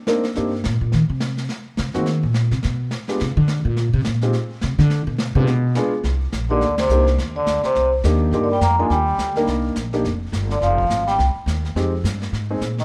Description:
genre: jazz, small-group swing and bop.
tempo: 210 BPM.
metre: 4/4.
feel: swing 59% on 8ths.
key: C minor.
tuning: A4 = 440 Hz.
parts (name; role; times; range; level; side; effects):
warm concert grand piano; accompaniment; 0.1-12.6 s; Ab3 to Bb4; -25 LUFS; equal; none.
vintage brush drum kit; drums; 0.1-12.8 s; brushed snare drum, hi-hat, kick drum, ride cymbal, snare drum; -32 LUFS; equal; none.
upright bass; bass; 0.4-12.8 s; F1 to Eb3; -22 LUFS; equal; none.
vibraphone with soft mallets; melody; 6.5-12.8 s; Bb4 to Bb5; -23 LUFS; equal; none.
trombone with metal mute; second line; 6.5-12.8 s; Bb2 to Bb3; -30 LUFS; equal; none.
room: light reverb.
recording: none.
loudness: -20 LUFS.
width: mono.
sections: 0.0-6.0 A section; 6.0-12.8 B section.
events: upright bass solo 0.0-6.0; band accent 6.8.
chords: 0.0 Cm9; 1.5 Ab (rootless); 2.6 G (rootless); 3.8 Cm7; 4.3 Csus2; 4.9 G7b9 (rootless); 6.0 Cm9; 10.6 Fm9.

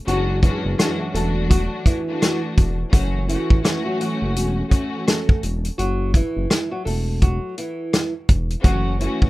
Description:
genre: hip hop, boom-bap hip-hop.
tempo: 84 BPM.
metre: 4/4.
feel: swing 61% on 16ths.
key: unclear.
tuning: A4 = 440 Hz.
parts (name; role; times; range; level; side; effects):
flamenco guitar; melody; 0.1-9.3 s; E3 to A4; -27 LUFS; right 1 dB; high-pass filter, low-pass filter, tape echo.
warm studio string section; accompaniment; 0.1-9.3 s; F#2 to F#4; -25 LUFS; left 1 dB; high-pass filter, low-pass filter.
smooth synth bass; bass; 0.1-9.3 s; E1 to A1; -23 LUFS; equal; none.
warm soul drum kit; drums; 0.1-9.3 s; hi-hat, kick drum, rim click, snare drum; -17 LUFS; equal; none.
room: light reverb.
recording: rough home demo mix.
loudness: -18 LUFS.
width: side -18 dB against mid.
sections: 0.0-9.3 A section.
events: none.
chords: 0.1 Dmaj9#11/F#; 1.1 E9sus4; 2.9 F#m7; 5.8 Esus2/F#; 6.9 Esus24; 8.6 F#m7.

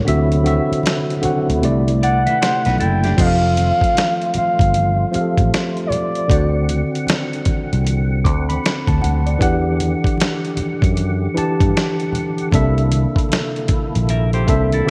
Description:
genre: R&B, neo-soul.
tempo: 77 BPM.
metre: 4/4.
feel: swing 62% on 16ths.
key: unclear.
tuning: A4 = 439 Hz.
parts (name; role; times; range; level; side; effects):
tine electric piano; accompaniment; 0.0-14.9 s; C3 to D6; -23 LUFS; equal; overdrive.
percussive tonewheel organ; sustained chords; 0.0-14.9 s; C3 to F#5; -30 LUFS; equal; chorus vibrato, slow rotary speaker.
sustaining fretless electric bass; bass; 0.1-14.8 s; F1 to G2; -20 LUFS; equal; none.
dusty soul sampler-style drum kit; drums; 0.1-14.9 s; crash cymbal, hi-hat, kick drum, snare drum; -22 LUFS; equal; none.
congas; percussion; 0.5-14.9 s; none; -33 LUFS; equal; none.
gliding portamento lead; melody; 2.0-6.7 s; C#5 to G5; -22 LUFS; equal; chorus.
clean electric guitar; second line; 2.0-3.4, 14.1-14.9 s; D4 to E5; -28 LUFS; equal; none.
room: light reverb, digital ambience.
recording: none.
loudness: -17 LUFS.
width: mono.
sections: 0.0-3.2 A section; 3.2-14.9 B section.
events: break 0.1-3.2.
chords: 0.1 D9; 1.6 C69; 3.2 F; 6.3 D7; 9.4 Em9; 12.5 C13.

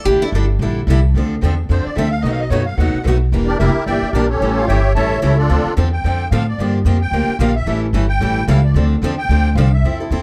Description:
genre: acoustic string swing (jazz manouche).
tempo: 221 BPM.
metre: 4/4.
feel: swing 58% on 8ths.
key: D minor.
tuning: A4 = 440 Hz.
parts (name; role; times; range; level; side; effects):
upright bass; bass; 0.0-10.2 s; E1 to A2; -18 LUFS; equal; none.
picked steel-string acoustic guitar; accompaniment; 0.1-10.2 s; B2 to A4; -25 LUFS; equal; none.
picked steel-string acoustic guitar; accompaniment; 0.1-10.2 s; B2 to Bb4; -30 LUFS; equal; none.
musette accordion; second line; 1.7-10.0 s; C#4 to A5; -23 LUFS; equal; none.
room: light reverb.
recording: dark, warm production.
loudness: -16 LUFS.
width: mono.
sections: 0.0-1.1 A section; 1.1-9.8 A section.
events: accordion solo 1.1-10.2.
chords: 0.1 A7sus4; 1.1 Dm7; 2.2 B7; 3.3 Em7b5; 4.4 A7; 5.5 Dm7; 6.6 Gm7; 7.7 A7; 8.8 Dm7.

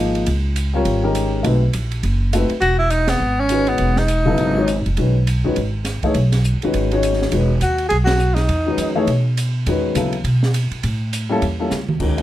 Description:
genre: modal jazz.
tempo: 204 BPM.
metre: 4/4.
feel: swing 60% on 8ths.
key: E major.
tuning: A4 = 441 Hz.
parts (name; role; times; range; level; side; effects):
warm baby grand piano; accompaniment; 0.0-12.2 s; C#3 to Eb5; -20 LUFS; left 2 dB; none.
upright bass; bass; 0.0-12.2 s; E1 to B2; -19 LUFS; equal; none.
open jazz drum kit; drums; 0.1-12.2 s; crash cymbal, hi-hat, kick drum, ride cymbal, snare drum, toms; -28 LUFS; right 3 dB; none.
breathy tenor saxophone; melody; 2.6-4.9, 7.6-8.9 s; B3 to G#4; -19 LUFS; equal; plate reverb.
room: light reverb.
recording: dark, warm production.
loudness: -16 LUFS.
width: side -14 dB against mid.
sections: 0.0-2.6 A section; 2.6-12.0 B section.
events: band accent 3.1, 8.1; drum fill 11.7.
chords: 0.0 Dbmaj9; 1.4 B7b9; 2.6 Emaj9; 10.8 A7b9.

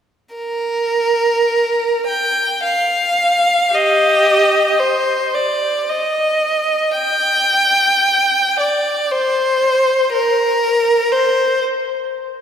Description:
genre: classical, free, expressive piece for unaccompanied violin.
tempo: 51-60 BPM.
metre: 3/4.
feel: rubato.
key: G minor.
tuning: A4 = 440 Hz.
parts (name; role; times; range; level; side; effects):
bright violin; solo; 0.3-11.6 s; G4 to G5; -14 LUFS; equal; none.
room: wet church reverb, RT60 2.7 s.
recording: none.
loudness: -13 LUFS.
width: side -8 dB against mid.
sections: 0.3-12.4 A section.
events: none.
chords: none.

